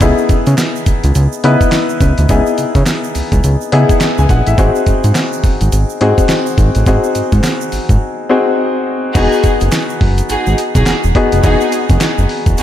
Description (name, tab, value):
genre	R&B, new jack swing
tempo	105 BPM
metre	4/4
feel	swing 60% on 16ths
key	C# minor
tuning	A4 = 440 Hz
part	clear grand piano	accompaniment	0.0-12.6 s	B3 to G#5	-15 LUFS	left 3 dB	none
part	fat analog bass	bass	0.0-12.6 s	E1 to C#3	-13 LUFS	equal	none
part	dusty soul sampler-style drum kit	drums	0.0-12.6 s	crash cymbal, handclaps, hi-hat, kick drum, snare drum	-14 LUFS	right 1 dB	vintage 12-bit sampler grit
part	tube shaker	percussion	0.0-12.6 s	none	-31 LUFS	right 12 dB	none
part	warm studio string section	stabs	9.1-12.6 s	D#4 to G#4	-18 LUFS	right 2 dB	diffuse ambient delay
room	moderate plate reverb, RT60 2.3 s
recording	dreamy mix soaked in reverb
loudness	-10 LUFS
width	side -11 dB against mid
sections	0.0-9.2 A section; 9.2-12.6 B section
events	break 8.0-9.2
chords	0.0 C#m9; 4.6 G#7; 9.2 Emaj9